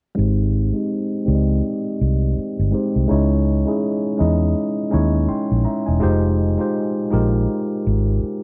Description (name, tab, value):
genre	R&B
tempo	82 BPM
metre	4/4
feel	swing 58% on 16ths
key	Ab major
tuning	A4 = 441 Hz
part	tine electric piano	accompaniment	0.1-8.4 s	Ab3 to C6	-23 LUFS	equal	overdrive, low-pass filter
part	vintage muted fingered electric bass	bass	0.2-8.3 s	Fb1 to Fb2	-20 LUFS	equal	none
room	little or no reverb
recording	dry, close 1970s-style studio recording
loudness	-20 LUFS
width	mono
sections	0.2-8.4 A section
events	filter sweep on tine electric piano 0.2-8.4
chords	0.2 Abmaj7; 3.1 Dbmadd9; 6.0 Fm9